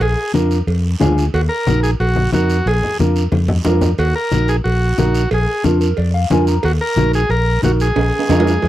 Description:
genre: latin, cumbia.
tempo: 181 BPM.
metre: 4/4.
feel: straight.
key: Eb harmonic minor.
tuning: A4 = 442 Hz.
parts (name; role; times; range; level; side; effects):
combo organ; melody; 0.0-8.7 s; Gb4 to Bb4; -19 LUFS; equal; none.
fingered electric bass; bass; 0.0-8.7 s; Bb1 to F2; -16 LUFS; equal; none.
cowbell and timbales; percussion; 0.0-8.7 s; none; -23 LUFS; right 4 dB; none.
guiro; percussion; 0.0-8.7 s; none; -32 LUFS; right 6 dB; none.
mellow electric guitar; accompaniment; 0.3-8.5 s; D4 to Bb5; -18 LUFS; equal; none.
congas; percussion; 0.3-8.5 s; none; -21 LUFS; left 3 dB; none.
room: little or no reverb.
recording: dry, close 1970s-style studio recording.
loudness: -13 LUFS.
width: side -14 dB against mid.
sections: 0.0-8.7 A section.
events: drum fill 3.3-4.0, 8.0-8.7; clean electric guitar fill 5.6-6.6.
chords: 0.0 Bb7; 1.3 Ebm; 2.7 Bb7; 4.0 Ebm; 5.3 Bb7; 6.6 Ebm; 8.0 Bb7.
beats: | 0.01 0.34 0.67 1.01 | 1.34 1.67 2.00 2.33 | 2.66 3.00 3.33 3.66 | 3.99 4.32 4.65 4.99 | 5.32 5.65 5.98 6.31 | 6.64 6.97 7.31 7.64 | 7.97 8.30 8.63.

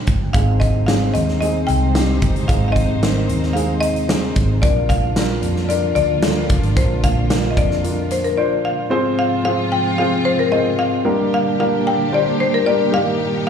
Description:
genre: piano-driven pop.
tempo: 112 BPM.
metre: 4/4.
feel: straight.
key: unclear.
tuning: A4 = 443 Hz.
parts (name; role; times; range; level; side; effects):
buzzing marimba with hard mallets; melody; 0.0-13.5 s; Bb4 to G5; -21 LUFS; left 2 dB; slapback echo, ping-pong delay.
vintage muted fingered electric bass; bass; 0.0-8.3 s; G1 to F2; -20 LUFS; equal; none.
huge arena drum kit; drums; 0.1-8.4 s; hi-hat, kick drum, snare drum; -20 LUFS; equal; none.
dark baby grand piano; accompaniment; 0.3-13.5 s; G2 to C5; -22 LUFS; equal; slapback echo.
warm studio string section; sustained chords; 0.3-13.5 s; Ab2 to C5; -24 LUFS; left 1 dB; none.
room: light reverb, small room ambience.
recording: live gig heard through the venue's PA, club reverb.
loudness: -15 LUFS.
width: side -7 dB against mid.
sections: 0.0-8.9 A section; 8.9-13.5 B section.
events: none.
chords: 0.3 Ab; 4.6 Bb; 8.9 Fm; 11.1 Gm; 12.9 Eb/G.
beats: | 0.34 0.88 1.42 1.95 | 2.49 3.02 3.56 4.09 | 4.63 5.16 5.70 6.23 | 6.77 7.30 7.84 8.38 | 8.91 9.45 9.98 10.52 | 11.05 11.59 12.12 12.66 | 13.19.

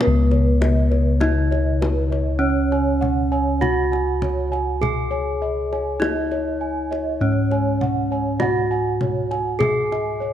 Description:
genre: Javanese gamelan.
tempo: 50 BPM.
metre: 4/4.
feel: straight.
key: C# slendro.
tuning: A4 = 440 Hz.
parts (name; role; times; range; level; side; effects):
gamelan-type bronze metallophone; melody; 0.0-10.3 s; B3-40c to G#4+20c; -23 LUFS; right 1 dB; slapback echo.
gamelan-type bossed gongs; arpeggios; 0.0-10.3 s; C#5 to G#5+20c; -29 LUFS; left 1 dB; none.
gamelan-type bronze metallophone; arpeggios; 0.0-10.3 s; B4-40c to G#5+20c; -29 LUFS; right 4 dB; none.
gamelan-type bossed gongs; bass; 0.0-10.3 s; C#2 to B4-40c; -22 LUFS; left 1 dB; none.
kendang; percussion; 0.0-10.1 s; none; -28 LUFS; left 2 dB; none.
room: light reverb.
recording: close, detailed microphones.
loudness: -18 LUFS.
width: side -10 dB against mid.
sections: 0.0-10.3 A section.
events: none.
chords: none.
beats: | 0.01 1.21 2.41 3.61 | 4.81 6.01 7.21 8.41 | 9.61.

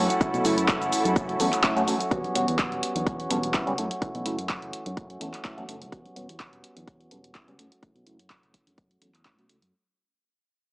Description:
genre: filtered disco house.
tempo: 126 BPM.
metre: 4/4.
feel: swing 54% on 16ths.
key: unclear.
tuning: A4 = 438 Hz.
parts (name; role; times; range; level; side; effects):
reed electric piano; accompaniment; 0.0-9.6 s; F#3 to A4; -29 LUFS; equal; phaser, sidechain pumping, low-pass filter.
rich symphonic string section; sustained chords; 0.0-2.1 s; E4 to F#5; -30 LUFS; equal; sidechain pumping, low-pass filter.
direct-recorded clean electric guitar; riff; 0.0-9.7 s; E3 to F#4; -30 LUFS; equal; sidechain pumping, low-pass filter.
overdriven fingered electric bass; bass; 0.0-9.7 s; E1 to B2; -34 LUFS; equal; sidechain pumping, low-pass filter.
punchy analog drum machine; drums; 0.1-9.7 s; cabasa, handclaps, hi-hat; -29 LUFS; equal; sidechain pumping on hats, sidechain pumping on perc.
tambourine and congas; percussion; 0.1-9.7 s; none; -38 LUFS; equal; none.
electronic kick drum; drums; 0.2-9.4 s; none; -28 LUFS; equal; none.
room: moderate plate reverb, RT60 1.3 s.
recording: small speaker sound.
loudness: -24 LUFS.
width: side -25 dB against mid.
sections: 0.0-9.7 A section.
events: fade-out 0.0-9.7; filter sweep 0.0-9.7.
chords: 0.0 F#m7; 2.1 Em69; 3.8 F#m7; 5.9 Em69; 7.6 F#m7.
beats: | 0.21 0.68 1.16 1.64 | 2.11 2.59 3.06 3.54 | 4.02 4.49 4.97 5.45 | 5.92 6.40 6.88 7.35 | 7.83 8.30 8.78 9.26.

